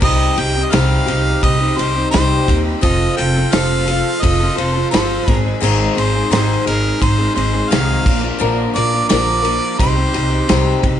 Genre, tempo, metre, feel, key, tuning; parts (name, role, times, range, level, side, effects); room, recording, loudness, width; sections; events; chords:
folk rock and heartland rock; 86 BPM; 4/4; straight; C minor; A4 = 440 Hz
bright harmonica; melody; 0.0-10.8 s; Bb4 to G5; -20 LUFS; equal; digital delay
picked acoustic archtop guitar; accompaniment; 0.0-11.0 s; Ab2 to Bb4; -21 LUFS; left 6 dB
warm studio string section; sustained chords; 0.0-11.0 s; Bb3 to C5; -30 LUFS; equal
electric guitar through a small old amp; riff; 0.0-11.0 s; Ab2 to Bb4; -22 LUFS; right 3 dB; spring reverb
upright bass; bass; 0.0-11.0 s; F1 to Eb2; -18 LUFS; right 1 dB
loose indie drum kit; drums; 0.0-11.0 s; crash cymbal, kick drum, ride cymbal, snare drum; -20 LUFS; equal
light reverb; nothing above 10.3 kHz; -13 LUFS; side -10 dB against mid
0.0-11.0 A section
0.0 Cm; 2.8 F; 5.3 Ab; 8.1 Bb; 9.8 Cm